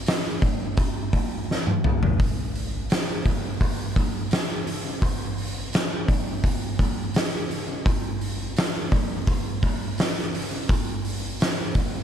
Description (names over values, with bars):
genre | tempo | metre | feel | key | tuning
metal | 85 BPM | 4/4 | straight | none | none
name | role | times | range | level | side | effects
oversized low-tuned drum kit | drums | 0.1-11.9 s | hi-hat, kick drum, snare drum, toms | -22 LUFS | equal | none
room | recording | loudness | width
little or no reverb | dark, warm production | -22 LUFS | side -9 dB against mid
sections
0.0-12.0 A section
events
drum fill 1.5-2.2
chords
none